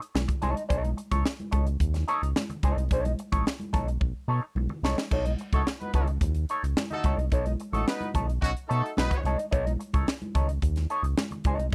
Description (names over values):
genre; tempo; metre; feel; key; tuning
funk; 109 BPM; 4/4; straight; unclear; A4 = 439 Hz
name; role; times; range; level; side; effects
clean electric guitar; accompaniment; 0.0-11.7 s; D#4 to C#5; -33 LUFS; equal; wah, lush chorus
crisp fusion drum kit; drums; 0.0-11.7 s; crash cymbal, hi-hat, kick drum, snare drum; -30 LUFS; equal; none
round analog bass; bass; 0.1-11.7 s; A1 to B2; -30 LUFS; equal; none
congas; percussion; 0.2-11.7 s; none; -39 LUFS; equal; none
warm horn section; second line; 5.5-9.2 s; F#3 to B4; -34 LUFS; equal; none
room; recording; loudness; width
little or no reverb; dry, close 1970s-style studio recording; -28 LUFS; mono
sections
0.0-11.7 A section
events
drum fill 4.0-5.1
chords
0.0 B9